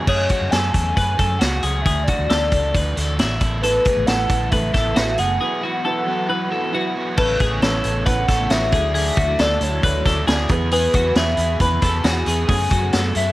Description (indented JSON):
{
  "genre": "jangly indie pop",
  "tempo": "135 BPM",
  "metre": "4/4",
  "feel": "straight",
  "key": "A major",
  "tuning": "A4 = 440 Hz",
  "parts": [
    { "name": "crunchy overdriven guitar", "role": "accompaniment", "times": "0.0-13.3 s", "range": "D3 to D5", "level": "-28 LUFS", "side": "right 3 dB", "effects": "none" },
    { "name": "twelve-string electric guitar", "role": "arpeggios", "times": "0.0-13.3 s", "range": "E4 to B4", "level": "-24 LUFS", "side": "left 2 dB", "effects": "warbly pitch drift" },
    { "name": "hollow clarinet-like synth lead", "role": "melody", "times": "0.1-13.3 s", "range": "B4 to B5", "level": "-22 LUFS", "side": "left 1 dB", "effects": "chorus, phaser" },
    { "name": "vintage muted fingered electric bass", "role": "bass", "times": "0.1-13.3 s", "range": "F#1 to F#2", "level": "-23 LUFS", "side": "equal", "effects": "none" },
    { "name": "vintage drum kit", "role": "drums", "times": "0.1-13.3 s", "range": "crash cymbal, hi-hat, kick drum, snare drum", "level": "-21 LUFS", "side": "equal", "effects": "none" },
    { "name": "warm upright piano", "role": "accompaniment", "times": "3.6-13.3 s", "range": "A3 to B4", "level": "-30 LUFS", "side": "right 5 dB", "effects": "none" },
    { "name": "string machine, violins", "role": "sustained chords", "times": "3.6-13.3 s", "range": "B2 to A4", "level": "-30 LUFS", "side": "equal", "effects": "ensemble chorus" }
  ],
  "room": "light reverb",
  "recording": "vinyl crackle",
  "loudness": "-16 LUFS",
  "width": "side -17 dB against mid",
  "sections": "0.1-7.2 A section; 7.2-13.3 B section",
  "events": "break 5.4-7.2",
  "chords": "0.1 F#madd9; 1.9 Dadd9; 3.4 Asus2; 5.4 Esus2; 7.2 Aadd9; 8.7 Dadd9; 10.5 E; 12.5 F#madd9"
}